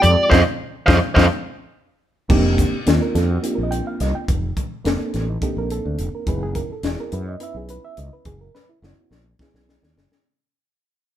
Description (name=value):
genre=electric jazz fusion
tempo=212 BPM (eighths)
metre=7/8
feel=straight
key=unclear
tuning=A4 = 440 Hz
part: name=smooth overdriven lead guitar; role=melody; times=0.0-1.2 s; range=C5 to F5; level=-17 LUFS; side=equal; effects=none
part: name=reed electric piano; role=accompaniment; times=0.0-10.2 s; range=Ab3 to G5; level=-25 LUFS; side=right 2 dB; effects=fast tremolo
part: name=fretless electric bass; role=bass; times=0.0-10.1 s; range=Fb1 to Gb2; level=-21 LUFS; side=equal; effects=none
part: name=crisp fusion drum kit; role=drums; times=0.0-10.2 s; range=crash cymbal, hi-hat, kick drum, snare drum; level=-22 LUFS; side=left 1 dB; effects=none
room=moderate stone room reverb, RT60 1.0 s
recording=band playing live in one room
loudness=-17 LUFS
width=side -11 dB against mid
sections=0.0-2.3 A section; 2.3-10.2 B section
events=band accent 0.3-2.3; fade-out 2.3-10.2; drum fill 8.5-10.2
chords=0.3 F5; 2.3 F13sus4; 6.3 Gb13sus4